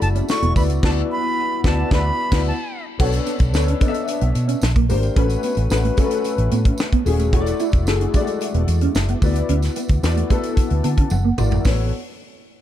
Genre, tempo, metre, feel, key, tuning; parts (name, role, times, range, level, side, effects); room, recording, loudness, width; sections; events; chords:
polished 1980s jazz-funk pop; 111 BPM; 4/4; straight; A major; A4 = 440 Hz
bright silver concert flute; melody; 0.0-2.8 s; A5 to C#6; -25 LUFS; right 2 dB; ping-pong delay
dark concert grand piano; accompaniment; 0.0-11.9 s; G#3 to A5; -23 LUFS; left 4 dB; ensemble chorus
mellow electric guitar; riff; 0.0-11.8 s; A3 to F#4; -26 LUFS; right 6 dB; ensemble chorus
vintage muted fingered electric bass; bass; 0.0-11.9 s; D#1 to D3; -19 LUFS; equal; tube saturation
tight funk drum kit; drums; 0.0-11.8 s; crash cymbal, hi-hat, kick drum, snare drum, toms; -20 LUFS; equal
tambourine; percussion; 0.0-11.9 s; -39 LUFS; right 7 dB
small room ambience; dark, warm production; -17 LUFS; side -12 dB against mid
0.0-3.0 A section; 3.0-11.7 B section
band accent 0.8-3.0; grand piano fill 10.6-11.7; drum fill 11.1-11.7
0.0 E9sus4; 0.6 D69; 2.5 N.C.; 3.0 Bm9; 4.6 Bb69; 5.2 A69; 7.3 E9sus4; 9.2 D69; 11.1 F#7alt; 11.7 A69